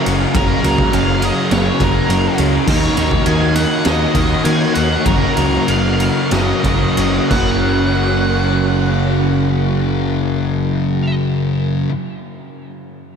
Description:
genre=rock, shoegaze and dream pop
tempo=88-103 BPM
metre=4/4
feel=straight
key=F# major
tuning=A4 = 441 Hz
part: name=string machine, violins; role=sustained chords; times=0.0-11.2 s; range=C#4 to C#6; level=-26 LUFS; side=right 1 dB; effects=ensemble chorus
part: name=direct-recorded clean electric guitar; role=arpeggios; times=0.0-11.9 s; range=A#3 to G#4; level=-28 LUFS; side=right 6 dB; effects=none
part: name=overdriven electric guitar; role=riff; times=0.0-11.9 s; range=F#2 to F#4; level=-23 LUFS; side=right 6 dB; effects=reverse reverb
part: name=overdriven electric guitar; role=riff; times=0.0-11.9 s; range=F#2 to D#4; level=-22 LUFS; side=right 2 dB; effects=lush chorus
part: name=thick fuzz guitar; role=riff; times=0.0-11.9 s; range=F#2 to D#4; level=-19 LUFS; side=left 5 dB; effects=distortion, lush chorus
part: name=growling picked electric bass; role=bass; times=0.1-11.8 s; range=F#1 to D#3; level=-20 LUFS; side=equal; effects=overdrive
part: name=raw garage drum kit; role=drums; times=0.1-7.5 s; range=crash cymbal, kick drum, ride cymbal, snare drum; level=-21 LUFS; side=equal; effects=none
part: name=octave-fuzz lead guitar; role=melody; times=0.4-11.1 s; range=A#4 to G#5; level=-23 LUFS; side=right 1 dB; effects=distortion, tape echo
room=wet cathedral reverb, RT60 6.2 s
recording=dreamy mix soaked in reverb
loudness=-13 LUFS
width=side -7 dB against mid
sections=0.0-7.6 A section; 7.6-10.4 B section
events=slowing down 2.7-7.6; drum fill 7.3-7.6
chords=0.0 F#maj9; 2.7 D#m7; 5.1 F#maj7; 7.3 F#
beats=| 0.35 0.93 1.52 2.10 | 2.68 3.27 3.86 4.46 | 5.06 5.68 6.32 6.97 | 7.65 8.33 9.02 9.70

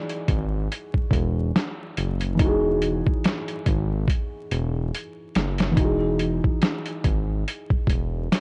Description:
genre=lo-fi hip hop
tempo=71 BPM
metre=4/4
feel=swing 56% on 16ths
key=E major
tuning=A4 = 440 Hz
part: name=felt-muted upright piano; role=accompaniment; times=0.0-8.4 s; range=E3 to D5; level=-30 LUFS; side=equal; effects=none
part: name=lo-fi sampler-style drum kit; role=drums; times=0.1-8.4 s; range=hi-hat, kick drum, snare drum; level=-26 LUFS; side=equal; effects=overdrive
part: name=smooth synth bass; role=bass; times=0.3-8.3 s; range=E1 to G#1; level=-28 LUFS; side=equal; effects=transformer saturation
room=light reverb, digital ambience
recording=worn, warbling old tape, cassette tape, vinyl crackle, warbly pitch drift, nothing above 10.7 kHz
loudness=-24 LUFS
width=mono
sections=0.0-5.8 A section; 5.8-8.4 B section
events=drum fill 4.1-5.8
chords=0.0 Emaj9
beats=0.70 1.55 | 2.39 3.24 4.08 4.93 | 5.77 6.62 7.46 8.31

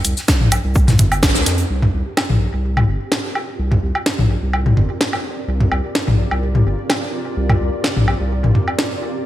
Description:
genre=minimal techno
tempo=127 BPM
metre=4/4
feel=straight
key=unclear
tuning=A4 = 441 Hz
part: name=saturated sub bass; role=bass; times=0.0-8.5 s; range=G1 to F2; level=-20 LUFS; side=equal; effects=sidechain pumping
part: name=gated 80s drum kit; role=drums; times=0.0-1.7 s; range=hi-hat, shaker, snare drum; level=-28 LUFS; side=right 2 dB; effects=sidechain pumping on hats, high-pass filter on hats, high-pass filter on snare, sidechain pumping on perc, high-pass filter on perc, high-pass filter on room, gated reverb
part: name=house drum kit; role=drums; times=0.0-8.9 s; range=hi-hat, shaker, snare drum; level=-21 LUFS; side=equal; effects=overdrive, gated reverb
part: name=electronic kick drum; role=drums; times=0.3-1.3 s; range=none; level=-16 LUFS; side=equal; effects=overdrive
part: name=electronic toms and woodblock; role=percussion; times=0.4-8.8 s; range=none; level=-18 LUFS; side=left 1 dB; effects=overdrive, digital delay
part: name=granular cloud pad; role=texture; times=3.0-9.3 s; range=C4 to D5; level=-28 LUFS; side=equal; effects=built-in reverb, wide subtle chorus, sidechain pumping
part: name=pulsing gated texture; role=texture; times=1.9-9.3 s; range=G4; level=-33 LUFS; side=equal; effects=chorus, built-in reverb, sidechain pumping
room=light reverb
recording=bright 1980s-style digital production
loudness=-15 LUFS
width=side -13 dB against mid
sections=0.0-1.7 A section; 1.7-9.3 B section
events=band accent 1.2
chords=0.0 C7(no3); 1.7 C5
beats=0.28 0.76 1.23 | 1.70 2.17 2.65 3.12 | 3.59 4.06 4.54 5.01 | 5.48 5.95 6.42 6.90 | 7.37 7.84 8.31 8.79

